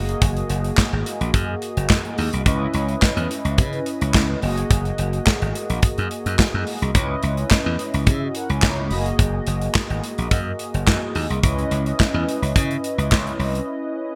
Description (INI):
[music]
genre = early-eighties boogie funk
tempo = 107 BPM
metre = 4/4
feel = straight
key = F# mixolydian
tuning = A4 = 439 Hz
[part]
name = mellow synth brass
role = accompaniment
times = 0.0-14.2 s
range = A#3 to B5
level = -29 LUFS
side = equal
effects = chorus
[part]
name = slap bass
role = bass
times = 0.0-13.6 s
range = F#1 to C#3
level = -25 LUFS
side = equal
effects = none
[part]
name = modern studio drum kit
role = drums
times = 0.1-13.7 s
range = handclaps, hi-hat, kick drum, snare drum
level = -22 LUFS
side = equal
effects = gated reverb
[sound]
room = light reverb, studio reverb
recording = bright 1980s-style digital production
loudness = -21 LUFS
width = mono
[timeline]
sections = 0.0-14.2 A section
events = break 13.7-14.2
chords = 0.0 F#69; 2.5 C#m9; 4.4 F#69; 6.9 C#m9; 8.9 F#69; 11.4 C#m9